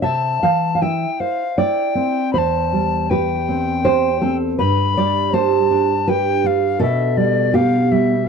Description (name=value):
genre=romantic duo for recorder and classical guitar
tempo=80 BPM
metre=3/4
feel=rubato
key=C major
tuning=A4 = 442 Hz
part: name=mellow tenor recorder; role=melody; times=0.0-8.3 s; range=D5 to B5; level=-21 LUFS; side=left 6 dB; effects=none
part: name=nylon-string guitar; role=accompaniment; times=0.0-8.3 s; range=E2 to F5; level=-17 LUFS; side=right 2 dB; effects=none
room=light reverb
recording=dry, close 1970s-style studio recording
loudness=-15 LUFS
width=side -5 dB against mid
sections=0.0-8.3 A section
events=none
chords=0.0 C; 2.3 C/E; 4.6 G; 6.8 G/B